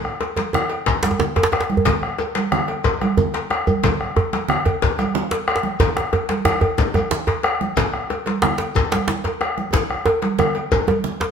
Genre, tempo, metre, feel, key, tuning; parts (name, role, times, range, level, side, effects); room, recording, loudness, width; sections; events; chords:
west african traditional, West African drum ensemble; 122 BPM (dotted quarters); 12/8; straight
bombo; percussion; 0.0-10.9 s; -23 LUFS; left 2 dB
congas; percussion; 0.2-11.2 s; -24 LUFS; right 4 dB
cowbell; percussion; 0.2-11.3 s; -29 LUFS; left 1 dB
djembe; percussion; 0.2-11.3 s; -25 LUFS; left 4 dB
djembe; percussion; 0.4-11.3 s; -21 LUFS; right 2 dB
shekere; percussion; 0.9-10.9 s; -28 LUFS; left 3 dB
wet large studio reverb, RT60 1.0 s; band playing live in one room; -18 LUFS; side -7 dB against mid
0.0-11.3 A section
drum fill 9.7-11.3